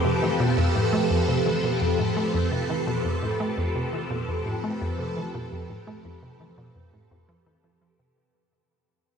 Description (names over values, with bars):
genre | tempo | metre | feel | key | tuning
ambient, sequencer-driven space music | 85 BPM | 4/4 | straight | unclear | A4 = 435 Hz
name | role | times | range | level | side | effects
phased string machine | sustained chords | 0.0-8.2 s | F3 to A4 | -26 LUFS | equal | ensemble chorus, phaser, shimmer reverb
resonant blip pluck | riff | 0.0-8.1 s | F2 to A3 | -26 LUFS | equal | chorus, ping-pong delay
bubbling stepped-filter texture | texture | 0.0-8.2 s | B4 | -35 LUFS | right 2 dB | chorus, built-in reverb, shimmer reverb
room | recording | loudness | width
wet huge ambient reverb, RT60 8.2 s | none | -23 LUFS | side -7 dB against mid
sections
0.0-8.2 A section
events
fade-out 0.6-8.2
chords
0.0 Fadd9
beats
0.40 1.11 1.81 | 2.52 3.23 3.93 4.64 | 5.34 6.05 6.75 7.46